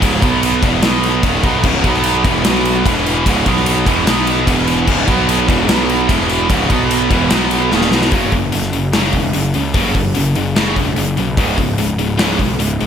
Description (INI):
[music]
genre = hard rock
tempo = 148 BPM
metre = 4/4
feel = straight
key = unclear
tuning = A4 = 442 Hz
[part]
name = cranked stack guitar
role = riff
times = 0.0-12.9 s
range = C#2 to B3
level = -19 LUFS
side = right 10 dB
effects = overdrive
[part]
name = heavy high-gain guitar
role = riff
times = 0.0-12.9 s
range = C#2 to B3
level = -18 LUFS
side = left 9 dB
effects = distortion
[part]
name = fuzz picked electric bass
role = bass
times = 0.0-12.9 s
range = C#1 to C#2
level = -19 LUFS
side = equal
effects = overdrive
[part]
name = gated 80s drum kit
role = drums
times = 0.0-12.9 s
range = crash cymbal, hi-hat, kick drum, ride cymbal, snare drum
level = -17 LUFS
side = left 1 dB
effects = none
[part]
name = distorted electric guitar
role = riff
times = 1.6-8.1 s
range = C#2 to B3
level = -21 LUFS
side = equal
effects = distortion
[sound]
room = light reverb, studio reverb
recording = none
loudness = -12 LUFS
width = side -8 dB against mid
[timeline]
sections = 0.0-8.1 A section; 8.1-12.9 B section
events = drum fill 7.7-8.1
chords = 0.0 C#5; 0.2 B5; 0.6 E5; 0.8 B5; 1.2 C#5; 1.8 B5; 2.2 E5; 2.4 B5; 2.9 E5; 3.3 C#5; 3.5 B5; 3.9 E5; 4.1 B5; 4.5 E5; 4.9 C#5; 5.1 B5; 5.5 E5; 5.7 B5; 6.1 E5; 6.5 C#5; 6.7 B5; 7.1 E5; 7.3 B5; 7.7 Bmaj7/D#; 8.1 F#5; 11.4 C#5